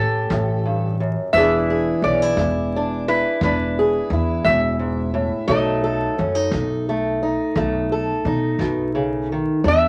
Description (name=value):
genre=acoustic country blues, solo or duo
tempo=58 BPM (dotted quarters)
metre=12/8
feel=straight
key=unclear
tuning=A4 = 440 Hz
part: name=lap resonator guitar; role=melody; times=0.0-9.9 s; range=A4 to E5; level=-23 LUFS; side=equal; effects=none
part: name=fingerpicked old ladder-braced acoustic guitar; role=accompaniment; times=0.0-9.9 s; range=E2 to A4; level=-23 LUFS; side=equal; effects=none
part: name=upright bass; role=bass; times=0.0-9.9 s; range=E1 to B2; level=-26 LUFS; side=equal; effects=none
part: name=kick drum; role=drums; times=0.3-8.8 s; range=none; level=-35 LUFS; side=equal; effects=none
room=moderate studio reverb, RT60 0.6 s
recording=vinyl crackle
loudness=-20 LUFS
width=mono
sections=0.0-9.6 A section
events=none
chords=0.0 A7; 1.4 E7; 5.5 B7